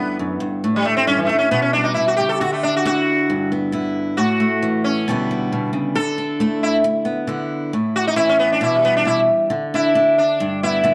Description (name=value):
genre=highlife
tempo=135 BPM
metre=4/4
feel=swing 55% on 16ths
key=unclear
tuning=A4 = 440 Hz
part: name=sitar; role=melody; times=0.0-10.9 s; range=E3 to A4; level=-20 LUFS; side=equal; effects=none
part: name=picked steel-string acoustic guitar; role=accompaniment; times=0.0-10.9 s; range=F#2 to E4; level=-23 LUFS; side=equal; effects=none
room=moderate spring reverb, RT60 1.1 s, small room reverb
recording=none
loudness=-19 LUFS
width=mono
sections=0.0-10.9 A section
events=sitar solo 0.0-10.9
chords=0.0 G6; 0.6 A5; 1.5 G/B; 2.4 Dadd9; 3.3 G6; 4.2 A5; 5.1 G6/B; 6.0 Dsus2; 6.9 G6 (rootless); 7.7 A; 8.6 G6/B; 9.5 N.C.; 10.4 G6